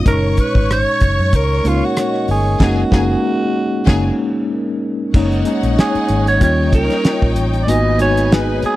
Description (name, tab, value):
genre	lush 1970s-style soul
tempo	94 BPM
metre	4/4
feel	swing 54% on 16ths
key	F# major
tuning	A4 = 440 Hz
part	rich symphonic string section	second line	0.0-8.8 s	D#4 to C#6	-24 LUFS	left 3 dB	none
part	mellow tine electric piano	accompaniment	0.0-8.8 s	A#2 to F#4	-19 LUFS	left 1 dB	medium stereo tremolo
part	vintage muted fingered electric bass	bass	0.0-8.7 s	F#1 to F#2	-18 LUFS	equal	none
part	growling alto saxophone	melody	0.1-8.8 s	E#4 to D#5	-19 LUFS	right 3 dB	none
part	cloth-damped thuddy drum kit	drums	0.1-8.8 s	crash cymbal, hi-hat, kick drum, rim click, snare drum	-15 LUFS	equal	none
part	vibraphone with soft mallets	texture	1.6-8.8 s	E#4 to D#5	-28 LUFS	left 6 dB	none
room	little or no reverb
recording	dry, close 1970s-style studio recording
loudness	-13 LUFS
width	side -16 dB against mid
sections	0.0-5.1 A section; 5.1-8.8 B section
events	band accent 2.6-5.1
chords	0.1 F#69; 6.4 D#7; 7.7 G#m7